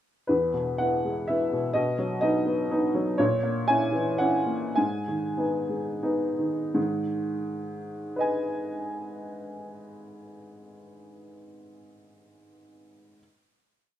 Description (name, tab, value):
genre	neoclassical minimalist piano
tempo	82-128 BPM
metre	3/4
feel	rubato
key	G# minor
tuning	A4 = 440 Hz
part	warm upright piano	solo	0.3-13.2 s	E2 to G#5	-25 LUFS	equal	none
room	wet studio reverb, RT60 0.5 s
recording	rough home demo mix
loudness	-24 LUFS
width	side -11 dB against mid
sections	0.3-6.8 A section; 6.8-11.0 final chord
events	slowing down 2.5-6.8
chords	0.3 E; 1.8 B; 3.2 A#dim; 4.8 G#m